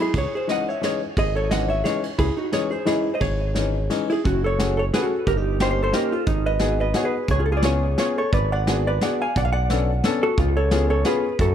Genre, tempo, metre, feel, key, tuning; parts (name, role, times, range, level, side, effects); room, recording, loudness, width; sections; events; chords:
musette waltz; 176 BPM; 3/4; swing 55% on 8ths, rubato; C# harmonic minor, F# harmonic minor from 4.3 s; A4 = 439 Hz
vintage hollow-body jazz guitar; melody; 0.0-11.5 s; C#4 to G#5; -23 LUFS; right 1 dB; tape echo
smooth synth bass; bass; 0.1-11.5 s; F#1 to F#2; -23 LUFS; right 1 dB
soft brush drum kit; drums; 0.1-11.5 s; hi-hat, kick drum, ride cymbal, snare drum; -26 LUFS; equal
warm upright piano; accompaniment; 0.5-11.2 s; E3 to A4; -26 LUFS; left 4 dB
little or no reverb; -19 LUFS; side -9 dB against mid
0.0-4.3 A section; 4.3-11.5 B section
0.1 C#madd9; 4.3 F#madd9; 5.3 D#7/G; 6.3 G#m7; 7.3 C#7; 8.3 G#m7b5; 9.4 Bm9; 10.4 C#7